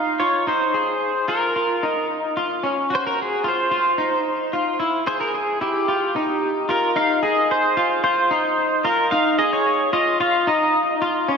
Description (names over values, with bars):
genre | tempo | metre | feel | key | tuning
dream pop | 111 BPM | 4/4 | straight | Ab major | A4 = 440 Hz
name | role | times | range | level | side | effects
pedal steel guitar | melody | 0.0-11.0 s | G4 to F5 | -21 LUFS | right 1 dB | analog chorus, ping-pong delay
clean electric guitar | arpeggios | 0.0-11.4 s | Db4 to Ab4 | -21 LUFS | left 1 dB | lush chorus, ping-pong delay
room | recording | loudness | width
wet lush hall reverb, RT60 2.6 s | dreamy mix soaked in reverb | -18 LUFS | side -6 dB against mid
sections
0.0-7.0 A section; 7.0-11.4 B section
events
none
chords
0.0 Ab69; 2.6 Gb5; 4.8 E; 5.9 Ebadd9; 7.0 Ab6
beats
| 0.48 1.02 1.56 2.10 | 2.64 3.18 3.72 4.26 | 4.80 5.34 5.88 6.42 | 6.96 7.50 8.04 8.58 | 9.12 9.66 10.21 10.75 | 11.29